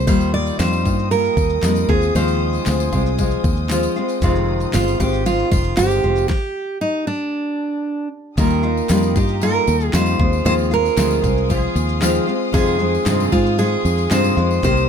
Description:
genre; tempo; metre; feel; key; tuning
acoustic pop; 116 BPM; 4/4; straight; Eb major; A4 = 438 Hz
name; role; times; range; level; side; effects
picked steel-string acoustic guitar; melody; 0.0-14.9 s; D4 to D5; -21 LUFS; right 3 dB; none
nylon-string guitar; accompaniment; 0.0-14.9 s; F2 to G4; -20 LUFS; left 2 dB; none
fingered electric bass; bass; 0.0-14.9 s; F1 to Ab2; -20 LUFS; equal; none
dark studio string section; sustained chords; 0.1-14.9 s; F4 to Eb6; -31 LUFS; left 4 dB; none
pop drum kit; drums; 0.1-14.8 s; kick drum, shaker, snare drum; -22 LUFS; equal; none
tambourine; percussion; 0.1-14.9 s; none; -33 LUFS; left 8 dB; none
room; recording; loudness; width
little or no reverb; close, detailed microphones; -16 LUFS; side -7 dB against mid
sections
0.0-8.4 A section; 8.4-14.9 B section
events
stop 6.3-8.4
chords
0.1 Ebadd9; 1.9 Ab6; 4.2 Fm7; 6.3 N.C.; 8.4 Ebadd9; 10.2 Ab6; 12.5 Fm7

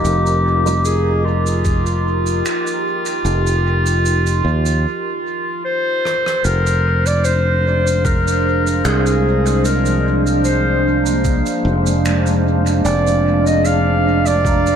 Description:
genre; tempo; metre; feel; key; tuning
ambient dub; 75 BPM; 4/4; swing 54% on 16ths; F dorian; A4 = 440 Hz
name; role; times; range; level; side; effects
clear clarinet; melody; 0.0-14.8 s; F4 to F5; -19 LUFS; equal; dub echo
deep dark ambient pad; sustained chords; 0.0-14.8 s; F3 to F5; -22 LUFS; right 2 dB; chorus, built-in reverb, vintage 12-bit sampler grit
fingered electric bass; bass; 0.0-14.8 s; F1 to Eb2; -17 LUFS; equal; none
shaker, finger snaps and rim click; drums; 0.0-14.8 s; none; -29 LUFS; right 3 dB; dub echo
filtered dub chord stab; stabs; 0.7-0.8 s; G3 to F4; -32 LUFS; right 5 dB; none
electronic kick drum; drums; 1.6-1.8, 8.0-14.6 s; none; -19 LUFS; equal; none
vibraphone with soft mallets; arpeggios; 9.2-14.8 s; F3 to Bb5; -23 LUFS; left 2 dB; tape echo
room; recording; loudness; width
moderate spring reverb, RT60 2.8 s; none; -14 LUFS; side -8 dB against mid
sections
0.0-6.4 A section; 6.4-14.8 B section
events
break 4.8-6.4; drum fill 6.0-6.4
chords
0.0 Ebadd9/F; 6.4 Fm6

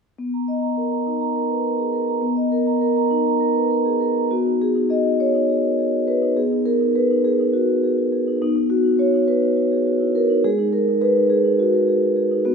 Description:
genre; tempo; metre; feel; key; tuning
classical, contemporary piece for solo vibraphone; 206 BPM (eighths); 7/8; straight; B major; A4 = 440 Hz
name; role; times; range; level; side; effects
vibraphone with soft mallets; solo; 0.2-12.5 s; G#3 to A#5; -17 LUFS; equal; none
room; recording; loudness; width
wet recital hall reverb, RT60 1.6 s; recorded in a church or concert hall; -17 LUFS; side -5 dB against mid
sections
0.2-4.3 A section; 4.3-12.5 B section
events
none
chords
0.2 Bmaj7; 4.3 B6; 8.4 B; 10.4 G#5

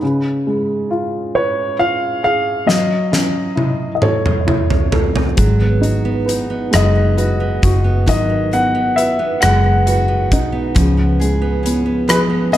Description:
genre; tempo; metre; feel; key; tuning
six-eight pop ballad; 45 BPM (dotted quarters); 6/8; straight; unclear; A4 = 440 Hz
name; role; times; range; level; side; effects
dark upright piano; accompaniment; 0.0-12.6 s; C#3 to B4; -19 LUFS; equal; none
warm grand piano; melody; 1.4-12.6 s; B4 to F#5; -19 LUFS; left 1 dB; tape echo
huge arena drum kit; drums; 2.7-12.6 s; hi-hat, kick drum, rim click, snare drum, toms; -18 LUFS; equal; none
fingerpicked steel-string acoustic guitar; arpeggios; 5.4-12.6 s; E#3 to G#4; -21 LUFS; right 2 dB; none
vintage muted fingered electric bass; bass; 5.4-12.6 s; F#1 to C#2; -17 LUFS; equal; none
room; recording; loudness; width
light reverb, studio ambience; dark, warm production; -13 LUFS; side -12 dB against mid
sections
0.0-12.6 A section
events
drum fill 2.7-5.4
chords
0.0 C#7; 2.7 F#m7; 5.4 G#m7; 10.8 C#7

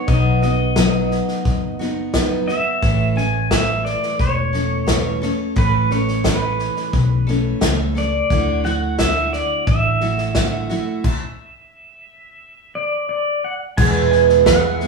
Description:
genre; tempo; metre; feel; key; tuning
honky-tonk and classic country; 88 BPM; 4/4; straight; unclear; A4 = 441 Hz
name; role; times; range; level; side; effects
pedal steel guitar; melody; 0.0-14.9 s; B4 to G#5; -22 LUFS; equal; none
picked steel-string acoustic guitar; accompaniment; 0.0-14.9 s; E2 to A4; -20 LUFS; right 2 dB; none
hollow-body short-scale fingered electric bass; bass; 0.1-14.9 s; E1 to E2; -22 LUFS; equal; none
natural country drum kit; drums; 0.1-14.9 s; crash cymbal, hi-hat, kick drum, snare drum; -21 LUFS; left 1 dB; none
mellow tonewheel organ; accompaniment; 13.8-14.9 s; G#4 to E5; -27 LUFS; right 5 dB; slow rotary speaker, chorus vibrato
room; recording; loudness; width
wet studio reverb, RT60 0.8 s; band playing live in one room, studio reverb; -16 LUFS; side -4 dB against mid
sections
0.0-13.8 A section; 13.8-14.9 B section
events
stop 11.0-13.8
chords
0.0 B; 2.8 A; 8.3 Dadd9; 13.8 E

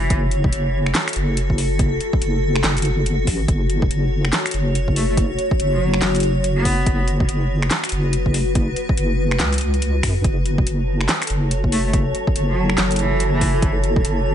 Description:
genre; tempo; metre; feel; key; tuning
deep dubstep; 142 BPM; 4/4; swing 60% on 16ths, half-time; F# minor; A4 = 440 Hz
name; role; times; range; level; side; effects
clear cello; melody; 0.0-0.1, 5.0-7.0, 11.7-13.6 s; E3 to B3; -27 LUFS; equal; dub echo
granular cloud pad; sustained chords; 0.0-14.3 s; F#4 to C#5; -24 LUFS; left 1 dB; built-in reverb
deep soft wobble bass; bass; 0.0-14.3 s; F#1 to F#2; -20 LUFS; equal; chorus
deep house drum kit; drums; 0.1-14.1 s; finger snaps, handclaps, hi-hat, snare drum; -23 LUFS; equal; overdrive
electronic kick drum; drums; 0.1-14.0 s; none; -22 LUFS; equal; overdrive
wind-like tuned noise texture; texture; 10.9-14.3 s; A4; -27 LUFS; right 4 dB; built-in reverb
room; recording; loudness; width
light reverb; nothing above 10.5 kHz; -17 LUFS; side -9 dB against mid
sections
0.0-14.3 A section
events
none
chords
0.0 F#m

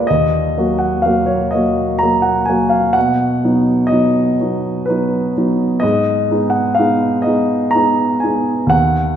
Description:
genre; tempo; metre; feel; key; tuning
classical, romantic nocturne for solo piano; 62 BPM; 3/4; rubato; unclear; A4 = 440 Hz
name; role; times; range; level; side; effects
warm grand piano; solo; 0.0-9.2 s; Eb2 to Bb5; -13 LUFS; equal; none
room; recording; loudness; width
wet concert hall reverb, RT60 2.1 s; minimal, uncompressed stereo recording; -13 LUFS; side -9 dB against mid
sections
0.0-9.2 A section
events
none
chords
0.1 Ebm; 3.0 B; 5.8 Abm

